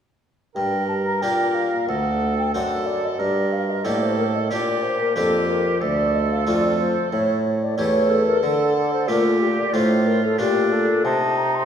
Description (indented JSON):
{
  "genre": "classical, baroque-style sonata movement with continuo",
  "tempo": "92 BPM",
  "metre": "4/4",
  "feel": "rubato",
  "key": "G minor",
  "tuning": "A4 = 440 Hz",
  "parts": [
    { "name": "mellow baroque flute", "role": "melody", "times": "0.6-11.7 s", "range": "G4 to C6", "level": "-23 LUFS", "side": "left 2 dB", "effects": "none" },
    { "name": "clear oboe", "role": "second line", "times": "0.6-11.7 s", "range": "D4 to Bb4", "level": "-27 LUFS", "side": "right 4 dB", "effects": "none" },
    { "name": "harpsichord", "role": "accompaniment", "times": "0.6-11.7 s", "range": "D2 to A4", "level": "-24 LUFS", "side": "equal", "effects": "none" },
    { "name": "mellow bassoon", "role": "bass", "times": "0.6-11.7 s", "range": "D2 to D3", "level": "-25 LUFS", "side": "right 1 dB", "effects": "none" }
  ],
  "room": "wet recital hall reverb, RT60 1.8 s",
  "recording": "heard from further back in the room",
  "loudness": "-18 LUFS",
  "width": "side -8 dB against mid",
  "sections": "0.6-11.7 A section",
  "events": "none",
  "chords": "0.6 Gm; 1.9 D7; 3.2 Gm; 5.8 Dm; 7.1 A5; 8.4 Dm; 11.0 N.C."
}